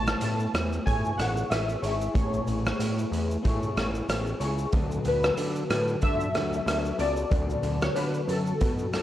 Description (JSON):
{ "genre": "indie pop, bedroom pop", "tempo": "93 BPM", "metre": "4/4", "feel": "swing 55% on 16ths", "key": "A major", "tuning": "A4 = 440 Hz", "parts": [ { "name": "warbly lo-fi synth keys", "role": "melody", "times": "0.0-9.0 s", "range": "A4 to A5", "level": "-30 LUFS", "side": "left 1 dB", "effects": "ensemble chorus, slapback echo" }, { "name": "electric guitar through a small old amp", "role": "accompaniment", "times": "0.0-9.0 s", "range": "D3 to C#5", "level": "-32 LUFS", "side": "left 3 dB", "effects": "ensemble chorus, warbly pitch drift" }, { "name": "fat analog bass", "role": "bass", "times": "0.0-9.0 s", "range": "G#1 to D3", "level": "-30 LUFS", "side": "right 1 dB", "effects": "none" }, { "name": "raw garage drum kit", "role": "drums", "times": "0.1-9.0 s", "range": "hi-hat, kick drum, rim click, shaker", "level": "-29 LUFS", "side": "equal", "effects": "none" } ], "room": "light reverb", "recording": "dark, warm production", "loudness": "-24 LUFS", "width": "side -12 dB against mid", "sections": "0.0-9.0 A section", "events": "none", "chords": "0.0 Amaj9; 4.7 D6", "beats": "0.21 0.86 1.50 | 2.15 2.79 3.44 4.09 | 4.73 5.38 6.02 6.67 | 7.32 7.96 8.61" }